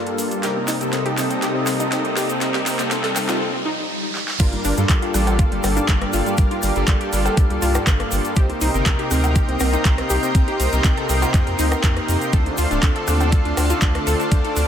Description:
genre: progressive house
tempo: 121 BPM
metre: 4/4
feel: straight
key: G minor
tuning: A4 = 440 Hz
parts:
  - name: lush unison pad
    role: sustained chords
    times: 0.0-14.7 s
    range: G2 to D6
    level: -28 LUFS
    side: equal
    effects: chorus, sidechain pumping
  - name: wide unison pluck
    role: arpeggios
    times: 0.0-14.7 s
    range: G3 to A4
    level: -26 LUFS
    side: equal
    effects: sidechain pumping, ping-pong delay
  - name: soft supersaw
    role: stabs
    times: 0.0-14.7 s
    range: G2 to C5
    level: -24 LUFS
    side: left 1 dB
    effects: sidechain pumping, low-pass filter, ping-pong delay
  - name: riser and swell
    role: sound effects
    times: 0.1-4.4 s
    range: none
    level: -30 LUFS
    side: right 1 dB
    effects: none
  - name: big-room dance drum kit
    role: drums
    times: 0.1-14.7 s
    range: crash cymbal, handclaps, hi-hat, rim click, snare drum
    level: -26 LUFS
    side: right 1 dB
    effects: overdrive, high-pass filter on snare, high-pass filter on hats, high-pass filter on cymbals
  - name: egg shaker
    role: percussion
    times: 0.2-14.7 s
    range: none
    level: -32 LUFS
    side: left 5 dB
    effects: none
  - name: saturated sub bass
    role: bass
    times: 4.4-14.6 s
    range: D1 to G2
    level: -22 LUFS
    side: equal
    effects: sidechain pumping
  - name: electronic kick drum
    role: drums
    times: 4.4-14.4 s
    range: none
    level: -17 LUFS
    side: equal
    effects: overdrive
  - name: electronic congas, cowbell and rim click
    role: percussion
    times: 4.5-14.5 s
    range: none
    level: -31 LUFS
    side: left 2 dB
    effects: overdrive, sidechain pumping on snare, sidechain pumping on perc
room: light reverb, digital ambience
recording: none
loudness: -17 LUFS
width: side -9 dB against mid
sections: 0.0-4.4 A section; 4.4-14.7 B section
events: build-up 0.0-4.4; drum fill 0.0-3.4, 4.2; filter sweep on supersaw synth 0.0-4.4; filter sweep on analog synth pad 0.0-4.4; riser 0.1-4.4; break 3.4-4.4; swell 3.4-4.4; drop 4.4-14.7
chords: 0.4 Cm7; 4.4 Gm7; 8.4 Cm7; 12.3 Dm7

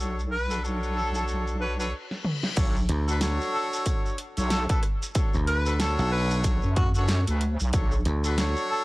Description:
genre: glitch hop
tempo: 93 BPM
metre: 4/4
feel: swing 59% on 16ths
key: B minor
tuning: A4 = 440 Hz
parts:
  - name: brilliant horn section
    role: stabs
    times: 0.0-8.8 s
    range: D4 to C#5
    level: -32 LUFS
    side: left 1 dB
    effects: sidechain pumping, tape echo
  - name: wobble bass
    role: bass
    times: 0.0-8.0 s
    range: B1 to F#2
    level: -27 LUFS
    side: equal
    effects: chorus, overdrive
  - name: shekere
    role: percussion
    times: 0.0-8.7 s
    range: none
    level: -39 LUFS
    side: right 2 dB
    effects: none
  - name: mellow harmonica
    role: melody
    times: 0.3-8.8 s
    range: F#4 to B4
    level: -31 LUFS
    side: equal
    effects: tape echo
  - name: reverse cymbal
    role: sound effects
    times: 1.9-2.6 s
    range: none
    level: -38 LUFS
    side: left 6 dB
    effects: none
  - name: dubstep drum kit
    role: drums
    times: 2.1-8.5 s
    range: crash cymbal, hi-hat, rim click, snare drum, toms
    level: -31 LUFS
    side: equal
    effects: low-pass filter on snare, studio reverb, low-pass filter on toms, low-pass filter on hats, low-pass filter on cymbals
  - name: electronic kick drum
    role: drums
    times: 2.6-7.9 s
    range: none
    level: -25 LUFS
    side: equal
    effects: studio reverb
  - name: dry thumbed slap bass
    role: bass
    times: 2.9-8.5 s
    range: B1 to D2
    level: -24 LUFS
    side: equal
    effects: none
room: little or no reverb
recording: dry, gritty hardware recording, cassette tape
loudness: -23 LUFS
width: side -20 dB against mid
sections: 0.0-2.6 A section; 2.6-8.8 B section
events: reverse cymbal 1.9-2.6; drum fill 2.1-2.6; drop 2.6-8.8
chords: 0.0 Bm9

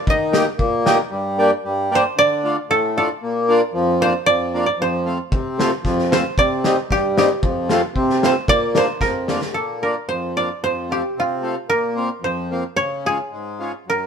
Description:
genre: alpine folk, alpine dance band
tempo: 114 BPM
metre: 2/4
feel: straight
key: Bb major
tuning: A4 = 440 Hz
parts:
  - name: koto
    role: melody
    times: 0.0-14.1 s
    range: F4 to Eb5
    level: -20 LUFS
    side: right 2 dB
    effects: none
  - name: accordion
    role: accompaniment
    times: 0.1-14.1 s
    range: F2 to G4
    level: -19 LUFS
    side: left 1 dB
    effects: none
  - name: loose indie drum kit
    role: drums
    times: 0.1-1.0, 5.3-9.5 s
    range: hi-hat, kick drum, snare drum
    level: -22 LUFS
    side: left 1 dB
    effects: none
room: moderate stone room reverb, RT60 1.1 s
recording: band playing live in one room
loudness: -17 LUFS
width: side -7 dB against mid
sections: 0.0-1.1 A section; 1.1-9.6 B section; 9.6-14.1 C section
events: drum fill 9.0-9.6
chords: 0.1 Eb; 1.1 Gm; 2.2 Dm; 3.2 Bb; 4.8 F; 6.4 Cmadd9; 7.4 F; 8.5 Bb; 10.6 F; 11.7 Bbsus2; 12.8 Db

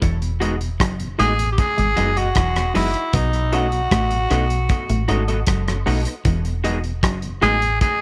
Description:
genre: lovers rock reggae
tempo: 77 BPM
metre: 4/4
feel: straight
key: E major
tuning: A4 = 439 Hz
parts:
  - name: clean electric guitar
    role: riff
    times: 0.0-7.7 s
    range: E3 to B3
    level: -30 LUFS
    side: equal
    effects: tape echo
  - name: deep dub fingered electric bass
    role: bass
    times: 0.0-7.8 s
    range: E1 to B1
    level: -24 LUFS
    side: equal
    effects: none
  - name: cloth-damped thuddy drum kit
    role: drums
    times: 0.0-8.0 s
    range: hi-hat, kick drum, rim click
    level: -25 LUFS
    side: equal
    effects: tape echo
  - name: mellow tonewheel organ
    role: accompaniment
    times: 0.2-7.7 s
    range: E2 to F#4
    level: -36 LUFS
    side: equal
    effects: none
  - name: tine electric piano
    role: accompaniment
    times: 0.4-7.6 s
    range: G#3 to F#4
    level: -30 LUFS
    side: equal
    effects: none
  - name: electric guitar through a small old amp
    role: stabs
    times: 0.4-7.6 s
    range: F#4 to D#5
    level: -31 LUFS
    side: equal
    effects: subtle chorus, tape echo
  - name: raspy tenor saxophone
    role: melody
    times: 1.2-8.0 s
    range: D#4 to G#4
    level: -23 LUFS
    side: equal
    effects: tape echo
room: studio reverb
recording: none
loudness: -20 LUFS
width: mono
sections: 0.0-8.0 A section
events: none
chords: 0.0 Emaj9; 3.1 B7; 6.3 Emaj9

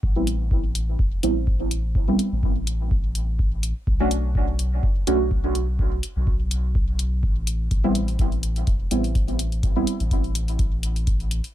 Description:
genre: dub techno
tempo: 125 BPM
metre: 4/4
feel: swing 54% on 16ths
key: A dorian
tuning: A4 = 442 Hz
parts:
  - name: soft dub sub bass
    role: bass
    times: 0.0-11.4 s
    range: F#1 to B1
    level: -25 LUFS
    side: equal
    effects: sidechain pumping
  - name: electronic kick drum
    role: drums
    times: 0.0-11.2 s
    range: none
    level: -23 LUFS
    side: equal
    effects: none
  - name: deep mellow chord stab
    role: stabs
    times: 0.2-9.8 s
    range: G3 to F#4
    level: -25 LUFS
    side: right 2 dB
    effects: chorus, phaser, sidechain pumping, dub echo
  - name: electronic hi-hat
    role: drums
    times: 0.3-11.5 s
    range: none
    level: -32 LUFS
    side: left 3 dB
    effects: none
room: little or no reverb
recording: none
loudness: -20 LUFS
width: side -13 dB against mid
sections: 0.0-11.5 A section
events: none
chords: 0.0 Am9; 3.9 B7(no3); 7.7 Am9

